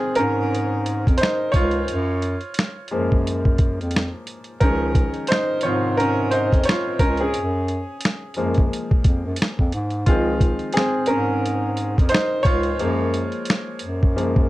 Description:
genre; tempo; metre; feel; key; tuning
lo-fi hip hop; 88 BPM; 4/4; swing 61% on 16ths; Db major; A4 = 439 Hz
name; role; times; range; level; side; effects
bright upright piano; accompaniment; 0.0-14.5 s; C3 to Db5; -22 LUFS; equal; none
breathy bass clarinet; bass; 0.2-14.5 s; Db2 to Ab2; -24 LUFS; equal; none
boom bap sampler-style drum kit; drums; 0.2-14.5 s; finger snaps, hi-hat, kick drum, snare drum; -19 LUFS; equal; none
room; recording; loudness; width
light reverb; cassette tape; -18 LUFS; side -17 dB against mid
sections
0.0-14.5 A section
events
upright piano solo 0.0-14.5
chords
0.0 Dbmaj9; 1.9 Gbmaj9; 4.6 Dbmaj9; 7.3 Gbmaj9; 10.1 Dbmaj9; 12.8 Gbmaj9

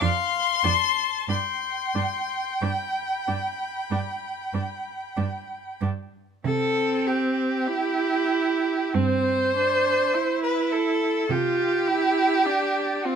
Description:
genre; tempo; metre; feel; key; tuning
classical, slow romantic movement for string quartet; 45-52 BPM; 4/4; rubato; C major; A4 = 440 Hz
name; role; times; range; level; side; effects
rich violin; melody; 0.0-13.2 s; E5 to C6; -27 LUFS; left 12 dB; none
rich violin; second line; 0.0-13.2 s; F4 to A5; -25 LUFS; equal; none
rich viola; accompaniment; 0.0-13.2 s; C4 to F4; -26 LUFS; right 4 dB; none
rich cello; bass; 0.0-12.2 s; F2 to C3; -28 LUFS; right 5 dB; none
room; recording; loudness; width
light reverb; minimal, uncompressed stereo recording; -22 LUFS; side -7 dB against mid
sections
0.0-6.5 A section; 6.5-13.2 B section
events
none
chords
0.0 Dm/F; 1.3 G; 6.5 C; 11.3 F5/C

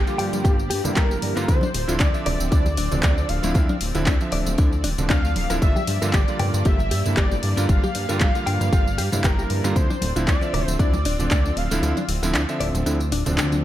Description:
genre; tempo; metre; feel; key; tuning
nu-disco, nu disco; 116 BPM; 4/4; swing 55% on 16ths; G dorian; A4 = 440 Hz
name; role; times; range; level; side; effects
wide unison lead; melody; 0.0-12.1 s; G4 to F5; -29 LUFS; left 1 dB; wide subtle chorus, ping-pong delay
lush unison pad; sustained chords; 0.0-13.6 s; F3 to E6; -34 LUFS; right 1 dB; chorus, sidechain pumping
chorused synth bass; bass; 0.0-13.6 s; D1 to G2; -24 LUFS; equal; none
clear electric grand piano; accompaniment; 0.1-13.6 s; D3 to E5; -28 LUFS; right 2 dB; sidechain pumping, ping-pong delay
house drum kit; drums; 0.1-13.6 s; handclaps, hi-hat, rim click, tambourine; -28 LUFS; equal; studio reverb
direct-recorded clean electric guitar; riff; 0.2-13.6 s; A3 to G5; -30 LUFS; left 4 dB; analog chorus
congas; percussion; 0.3-13.6 s; none; -32 LUFS; right 1 dB; none
electronic kick drum; drums; 0.4-11.4 s; none; -20 LUFS; equal; studio reverb
room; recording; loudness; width
little or no reverb; none; -19 LUFS; side -13 dB against mid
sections
0.0-13.6 A section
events
kick drops out 11.8-13.6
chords
0.0 Gm7; 1.5 Dm9; 5.6 Gm7; 9.8 Dm9

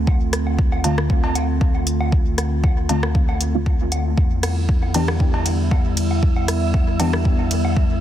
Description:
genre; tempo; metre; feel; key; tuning
dub techno; 117 BPM; 4/4; swing 54% on 16ths; D dorian; A4 = 442 Hz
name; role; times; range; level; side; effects
warbly tape-like pad; sustained chords; 0.0-8.0 s; D3 to F4; -26 LUFS; equal; chorus, built-in reverb, sidechain pumping
soft dub sub bass; bass; 0.0-8.0 s; D2 to E2; -22 LUFS; equal; sidechain pumping
electronic kick drum; drums; 0.1-7.9 s; none; -18 LUFS; equal; none
woodblock and cowbell; percussion; 0.1-7.7 s; none; -30 LUFS; equal; sidechain pumping on perc, dub echo
deep house drum kit; drums; 0.3-7.6 s; hi-hat, ride cymbal, rim click; -28 LUFS; equal; soft clipping on snare, dub echo
deep mellow chord stab; stabs; 0.8-7.2 s; D3 to G4; -26 LUFS; equal; chorus, phaser, sidechain pumping, dub echo
wind-like tuned noise texture; texture; 5.4-8.0 s; E5; -31 LUFS; right 7 dB; built-in reverb, sidechain pumping
room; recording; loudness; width
little or no reverb; dense, heavily limited modern master; -17 LUFS; side -11 dB against mid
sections
0.0-8.0 A section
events
none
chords
0.0 Dm7; 4.2 Em7

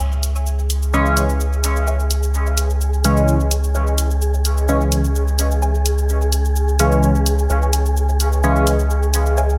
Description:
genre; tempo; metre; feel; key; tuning
dub techno; 128 BPM; 4/4; straight; C# minor; A4 = 438 Hz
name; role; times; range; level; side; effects
filtered dub chord stab; riff; 0.0-9.6 s; C#5 to G#5; -34 LUFS; equal; phaser, analog chorus, dub echo
round analog bass; bass; 0.0-9.6 s; C#2; -20 LUFS; equal; tube saturation
electronic shaker and hi-hat; drums; 0.0-9.6 s; none; -27 LUFS; equal; studio reverb
wind-like tuned noise texture; texture; 0.5-9.6 s; G#4; -30 LUFS; equal; built-in reverb
resonant sweep polysynth; stabs; 0.9-8.7 s; C#3 to C#4; -23 LUFS; equal; chorus, phaser, dub echo
room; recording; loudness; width
light reverb; none; -18 LUFS; mono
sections
0.0-9.6 A section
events
filter sweep on analog polysynth 0.0-9.6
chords
0.0 C#m

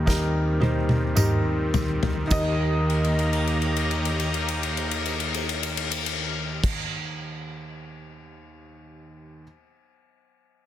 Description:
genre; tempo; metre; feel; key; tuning
pop ballad; 52 BPM; 4/4; straight; Eb major; A4 = 441 Hz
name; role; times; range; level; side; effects
bright grand piano; melody; 0.0-6.8 s; Eb5; -32 LUFS; equal; tape echo
felt-muted upright piano; accompaniment; 0.0-9.4 s; Eb2 to C5; -31 LUFS; right 2 dB; none
sweeping resonant pad; sustained chords; 0.0-6.8 s; Eb3 to Bb5; -32 LUFS; right 1 dB; chorus
nylon-string guitar; arpeggios; 0.0-6.9 s; Eb3 to G4; -36 LUFS; left 6 dB; none
fretless electric bass; bass; 0.0-6.8 s; Eb2; -27 LUFS; equal; none
unplugged drum kit; drums; 0.1-8.4 s; crash cymbal, kick drum, ride cymbal, snare drum, toms; -26 LUFS; left 1 dB; none
tambourine; percussion; 0.1-6.8 s; none; -35 LUFS; right 8 dB; none
room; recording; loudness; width
light reverb, studio ambience; dense, heavily limited modern master; -22 LUFS; side -12 dB against mid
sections
0.0-2.3 A section; 2.3-6.9 B section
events
slowing down 0.0-2.3; drum fill 0.1-2.3, 2.9-6.6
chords
0.0 Eb

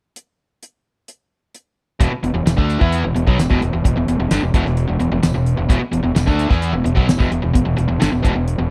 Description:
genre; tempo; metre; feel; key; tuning
classic rock; 130 BPM; 4/4; straight; unclear; A4 = 443 Hz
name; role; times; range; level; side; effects
damped 70s drum kit; drums; 0.2-8.6 s; hi-hat, kick drum, snare drum, tambourine; -20 LUFS; equal; none
biting overdriven guitar; riff; 2.0-8.7 s; E2 to E4; -24 LUFS; equal; none
overdriven electric guitar; riff; 2.0-8.7 s; E2 to E4; -25 LUFS; equal; none
fuzz fingered electric bass; bass; 2.0-8.7 s; E1 to E2; -23 LUFS; equal; overdrive
room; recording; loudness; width
studio reverb; dry, close 1970s-style studio recording; -17 LUFS; mono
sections
0.2-2.0 A section; 2.0-8.7 B section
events
none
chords
0.2 N.C.; 2.0 E5

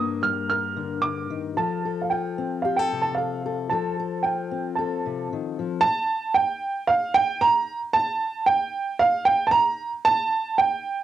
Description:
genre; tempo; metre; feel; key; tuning
folk; 113 BPM; 4/4; straight; unclear; A4 = 442 Hz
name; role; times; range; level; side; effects
warm upright piano; melody; 0.0-11.0 s; F5 to F6; -22 LUFS; right 3 dB; cassette tape
fingerpicked steel-string acoustic guitar; accompaniment; 0.0-5.8 s; G2 to Bb4; -28 LUFS; left 8 dB; none
room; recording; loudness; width
moderate small room reverb, RT60 0.6 s; home recording on cassette; -21 LUFS; side -12 dB against mid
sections
0.0-5.8 A section; 5.8-11.0 B section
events
none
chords
0.0 Gm; 1.6 F; 5.8 N.C.

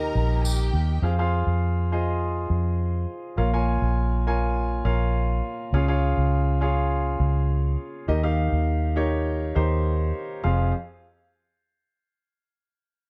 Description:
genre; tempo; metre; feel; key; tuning
piano-driven pop; 102 BPM; 4/4; straight; unclear; A4 = 440 Hz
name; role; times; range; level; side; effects
warm studio violin section; second line; 0.0-1.0 s; G4 to Bb5; -36 LUFS; equal; none
warm concert grand piano; accompaniment; 0.0-10.7 s; F2 to Bb5; -29 LUFS; equal; none
vintage muted fingered electric bass; bass; 0.0-10.7 s; F1 to F2; -25 LUFS; equal; none
tambourine; percussion; 0.4-0.6 s; none; -36 LUFS; equal; none
room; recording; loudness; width
light reverb, studio ambience; dark, warm production; -24 LUFS; mono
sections
0.0-1.0 A section; 1.0-10.4 B section; 10.4-12.8 C section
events
none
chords
0.0 Eb; 1.0 Fm; 3.4 Bbm; 5.7 Db; 8.1 Eb; 10.4 N.C.

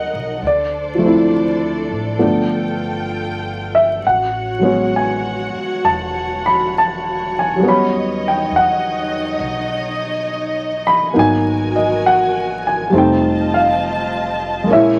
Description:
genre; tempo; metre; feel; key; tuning
jazz ballad; 67 BPM; 4/4; swing 66% on 8ths; unclear; A4 = 440 Hz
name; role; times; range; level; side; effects
warm baby grand piano; accompaniment; 0.0-15.0 s; F3 to B5; -18 LUFS; equal; none
warm symphonic string section; sustained chords; 0.0-15.0 s; D4 to A5; -25 LUFS; equal; none
upright bass; bass; 0.0-15.0 s; E1 to E2; -30 LUFS; equal; none
room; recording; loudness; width
moderate studio reverb, RT60 0.9 s; vinyl crackle; -17 LUFS; mono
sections
0.0-15.0 A section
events
none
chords
0.4 Dm7; 2.2 G9; 4.0 Amaj13; 7.6 D#7alt; 11.2 G#m9; 12.9 F7

